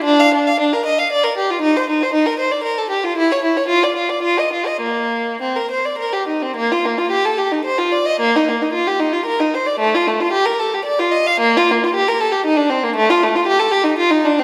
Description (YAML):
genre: classical, baroque-style suite movement for unaccompanied violin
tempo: 98-121 BPM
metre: 3/4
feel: rubato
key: Bb major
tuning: A4 = 440 Hz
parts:
  - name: rich violin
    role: solo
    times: 0.0-14.4 s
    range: A3 to F5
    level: -17 LUFS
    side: equal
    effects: none
room: wet concert hall reverb, RT60 1.9 s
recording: heard from further back in the room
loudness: -17 LUFS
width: mono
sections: 0.0-6.6 A section; 6.6-14.4 B section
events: none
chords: none